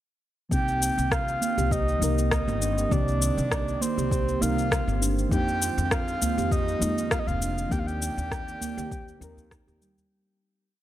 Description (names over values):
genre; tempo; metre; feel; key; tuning
organic downtempo; 100 BPM; 4/4; swing 54% on 16ths; C minor; A4 = 437 Hz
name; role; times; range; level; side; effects
breathy flute-like synth lead; melody; 0.5-9.5 s; C5 to G5; -30 LUFS; right 1 dB; chorus, tape echo
deep mellow chord stab; accompaniment; 0.5-10.1 s; Eb3 to Bb4; -35 LUFS; left 3 dB; chorus, sidechain pumping, tape echo
warm analog pad; sustained chords; 0.5-10.1 s; Eb3 to D5; -36 LUFS; right 1 dB; wide subtle chorus, sidechain pumping
steel tongue drum; arpeggios; 0.5-10.0 s; G3 to G4; -32 LUFS; right 4 dB; tape echo
upright bass; bass; 0.5-10.0 s; F1 to F2; -29 LUFS; equal; sidechain pumping
electronic kick drum; drums; 0.5-9.6 s; none; -29 LUFS; equal; none
electronic shaker and rim click; drums; 0.5-10.1 s; none; -31 LUFS; left 2 dB; none
udu; percussion; 6.2-10.1 s; none; -34 LUFS; left 1 dB; none
room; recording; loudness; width
light reverb, small room ambience; none; -23 LUFS; side -13 dB against mid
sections
0.5-10.1 groove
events
fade-out 6.9-10.1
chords
0.5 Cm7; 5.3 Fm7; 7.7 Ebmaj7